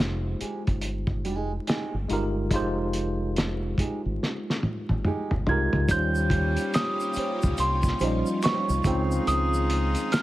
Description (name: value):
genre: R&B, neo-soul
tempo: 71 BPM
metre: 4/4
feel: swing 63% on 16ths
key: F minor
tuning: A4 = 440 Hz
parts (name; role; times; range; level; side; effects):
- tine electric piano; accompaniment; 0.0-10.2 s; F3 to Eb5; -30 LUFS; equal; overdrive, medium stereo tremolo
- deep dub fingered electric bass; bass; 0.0-9.9 s; F1 to Eb2; -28 LUFS; equal; none
- cloth-damped thuddy drum kit; drums; 0.0-10.2 s; hi-hat, kick drum, snare drum, toms; -27 LUFS; equal; none
- nylon-string guitar; second line; 0.4-8.7 s; Ab3 to C5; -33 LUFS; right 4 dB; none
- celesta; melody; 5.5-10.2 s; C6 to Ab6; -28 LUFS; right 2 dB; none
- string machine, violins; sustained chords; 5.9-10.2 s; Eb3 to F4; -36 LUFS; equal; ensemble chorus
- clear saxophone section; stabs; 5.9-10.2 s; G3 to Ab4; -34 LUFS; left 3 dB; none
- tube shaker and finger snaps; percussion; 5.9-10.2 s; none; -40 LUFS; left 3 dB; none
room: light reverb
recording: vinyl crackle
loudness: -23 LUFS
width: side -16 dB against mid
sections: 0.0-5.9 A section; 5.9-10.2 B section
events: drum fill 4.2-5.9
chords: 0.0 Fm9; 5.9 Eb13; 8.8 Dbmaj9